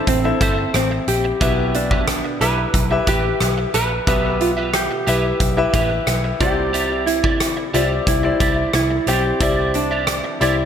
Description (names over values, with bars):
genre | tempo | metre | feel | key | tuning
1980s-style pop | 90 BPM | 4/4 | straight | unclear | A4 = 440 Hz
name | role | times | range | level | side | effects
hollow-body jazz guitar | melody | 0.0-10.7 s | C4 to B4 | -22 LUFS | equal | wide subtle chorus, digital delay
bright concert grand piano | accompaniment | 0.0-10.7 s | A2 to E5 | -22 LUFS | left 2 dB | none
vintage muted fingered electric bass | bass | 0.1-10.6 s | G1 to C2 | -24 LUFS | equal | none
huge arena drum kit | drums | 0.1-10.6 s | hi-hat, kick drum, rim click | -22 LUFS | equal | none
electric guitar at the edge of break-up | riff | 0.2-10.6 s | G4 to E5 | -25 LUFS | right 3 dB | ensemble chorus, digital delay
room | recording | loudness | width
wet lush hall reverb, RT60 2.2 s | bright 1980s-style digital production | -16 LUFS | side -8 dB against mid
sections
0.0-10.7 A section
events
none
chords
0.0 Am; 1.4 Em; 6.4 Cadd9